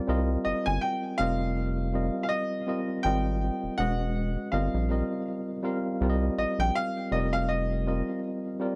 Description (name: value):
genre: R&B, neo-soul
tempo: 81 BPM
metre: 4/4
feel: swing 57% on 16ths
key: unclear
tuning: A4 = 436 Hz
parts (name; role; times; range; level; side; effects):
- tine electric piano; accompaniment; 0.0-8.8 s; G3 to F5; -32 LUFS; equal; overdrive
- rubbery square bass; bass; 0.1-8.0 s; Fb1 to C2; -31 LUFS; equal; none
- clear baby grand piano; melody; 0.4-8.2 s; Eb5 to Ab5; -33 LUFS; equal; none
room: little or no reverb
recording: dry, close 1970s-style studio recording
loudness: -29 LUFS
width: mono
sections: 0.0-8.8 A section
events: none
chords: 0.1 Cm7; 1.2 Fsus2; 3.0 Ab6; 3.8 Emaj9; 4.5 Ebadd9/G; 6.0 Cm7; 7.1 Fsus2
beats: | 0.07 0.81 1.55 2.29 | 3.03 3.77 4.51 5.25 | 5.99 6.73 7.47 8.21